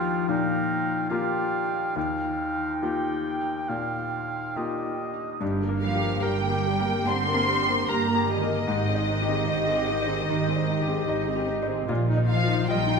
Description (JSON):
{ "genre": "cinematic", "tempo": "69-76 BPM", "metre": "4/4", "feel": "rubato", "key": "unclear", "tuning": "A4 = 440 Hz", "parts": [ { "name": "clear clarinet", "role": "second line", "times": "0.0-5.0 s", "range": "Eb4 to F4", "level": "-32 LUFS", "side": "left 1 dB", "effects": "none" }, { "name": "silver concert flute", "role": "second line", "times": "0.0-5.1 s", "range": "G5", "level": "-33 LUFS", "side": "right 2 dB", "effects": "none" }, { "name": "warm oboe", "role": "second line", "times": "0.0-5.4 s", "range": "Eb5 to G5", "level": "-32 LUFS", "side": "right 3 dB", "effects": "none" }, { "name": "bright grand piano", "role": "accompaniment", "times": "0.0-13.0 s", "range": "Eb2 to Eb5", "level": "-30 LUFS", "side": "left 2 dB", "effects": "none" }, { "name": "concert harp", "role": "arpeggios", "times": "0.0-13.0 s", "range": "G2 to C5", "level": "-32 LUFS", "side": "left 6 dB", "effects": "none" }, { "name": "muted symphonic viola section", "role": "accompaniment", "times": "5.4-13.0 s", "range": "G3 to Bb4", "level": "-31 LUFS", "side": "right 2 dB", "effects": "none" }, { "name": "muted symphonic double bass section", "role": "bass", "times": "5.4-13.0 s", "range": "G1 to Bb1", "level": "-30 LUFS", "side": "right 4 dB", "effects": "none" }, { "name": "muted studio violin section", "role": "melody", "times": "5.8-13.0 s", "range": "Eb5 to C6", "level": "-30 LUFS", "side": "left 1 dB", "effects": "none" }, { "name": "muted symphonic violin section", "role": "second line", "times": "5.8-13.0 s", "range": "Eb5 to C6", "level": "-30 LUFS", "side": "left 2 dB", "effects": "none" }, { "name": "muted symphonic cello section", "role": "bass", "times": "5.8-13.0 s", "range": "Eb3 to C4", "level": "-31 LUFS", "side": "right 4 dB", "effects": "none" } ], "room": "wet scoring stage reverb, RT60 2.1 s", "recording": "none", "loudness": "-23 LUFS", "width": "side -5 dB against mid", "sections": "0.0-5.4 A section; 5.4-13.0 B section", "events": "none", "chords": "0.0 Ebadd9; 5.4 Gm; 8.7 Abmaj7; 11.9 Bbsus4" }